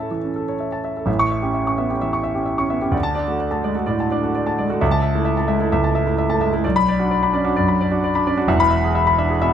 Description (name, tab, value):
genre	classical, virtuoso piano study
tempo	130 BPM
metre	4/4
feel	rubato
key	A major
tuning	A4 = 440 Hz
part	warm concert grand piano	solo	0.0-9.5 s	E1 to C#6	-17 LUFS	equal	none
room	moderate large studio reverb, RT60 1.2 s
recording	minimal, uncompressed stereo recording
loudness	-17 LUFS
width	side -9 dB against mid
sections	0.0-1.1 A section; 1.1-9.5 B section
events	none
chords	0.0 A; 1.1 A7; 2.9 D; 4.8 A/C#; 6.6 Bm; 8.5 E